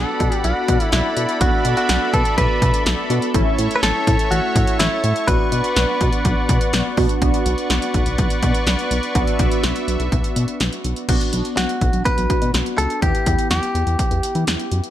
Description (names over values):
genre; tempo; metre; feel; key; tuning
synth-pop; 124 BPM; 4/4; straight; B minor; A4 = 439 Hz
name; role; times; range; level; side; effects
direct-recorded clean electric guitar; melody; 0.0-6.7, 11.6-14.4 s; E4 to B4; -22 LUFS; equal; ping-pong delay
warm analog keys; accompaniment; 0.0-14.9 s; A3 to G4; -25 LUFS; equal; chorus, phaser
brassy analog pad; sustained chords; 0.0-11.1 s; A4 to C#6; -24 LUFS; equal; chorus
chorused synth bass; bass; 0.0-14.8 s; A1 to E3; -21 LUFS; equal; none
punchy analog drum machine; drums; 0.2-14.9 s; crash cymbal, hi-hat, kick drum, snare drum; -20 LUFS; equal; none
room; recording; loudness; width
light reverb, digital ambience; none; -16 LUFS; side -12 dB against mid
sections
0.0-7.2 A section; 7.2-11.1 B section; 11.1-14.9 C section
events
none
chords
0.0 Bm7; 3.3 A; 5.3 Bmadd9; 11.1 Bm; 13.0 Em